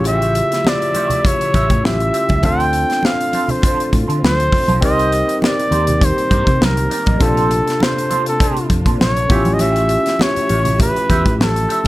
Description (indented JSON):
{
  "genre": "lush 1970s-style soul",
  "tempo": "101 BPM",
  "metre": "4/4",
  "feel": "swing 54% on 16ths",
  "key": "unclear",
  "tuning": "A4 = 441 Hz",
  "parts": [
    { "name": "mellow flugelhorn", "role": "melody", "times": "0.0-11.9 s", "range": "A4 to G5", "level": "-18 LUFS", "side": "equal", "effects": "none" },
    { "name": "barky tine electric piano", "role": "accompaniment", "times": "0.0-11.9 s", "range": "C3 to Bb4", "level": "-21 LUFS", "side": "left 1 dB", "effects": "none" },
    { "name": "muted studio string section", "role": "sustained chords", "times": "0.0-11.9 s", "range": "C3 to E5", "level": "-28 LUFS", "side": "right 1 dB", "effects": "none" },
    { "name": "fingered electric bass", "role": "bass", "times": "0.0-11.7 s", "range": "A1 to D3", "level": "-19 LUFS", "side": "equal", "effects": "none" },
    { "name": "congas", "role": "percussion", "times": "0.0-11.9 s", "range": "none", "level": "-24 LUFS", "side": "right 2 dB", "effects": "none" },
    { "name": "electric guitar through a small old amp", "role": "riff", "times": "0.1-11.9 s", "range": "D4 to E5", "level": "-25 LUFS", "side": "right 4 dB", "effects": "wah" },
    { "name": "modern studio drum kit", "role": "drums", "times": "0.1-11.9 s", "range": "hi-hat, kick drum, snare drum", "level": "-18 LUFS", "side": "equal", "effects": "none" }
  ],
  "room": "little or no reverb",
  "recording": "none",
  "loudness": "-13 LUFS",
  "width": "side -17 dB against mid",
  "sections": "0.0-11.9 A section",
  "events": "none",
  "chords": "0.0 A7b13; 2.4 Dm7; 4.8 Cm7; 7.2 Bbmaj9; 9.3 A7b13",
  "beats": "| 0.05 0.65 1.24 1.84 | 2.44 3.03 3.63 4.22 | 4.82 5.42 6.01 6.61 | 7.21 7.80 8.40 9.00 | 9.60 10.20 10.79 11.39"
}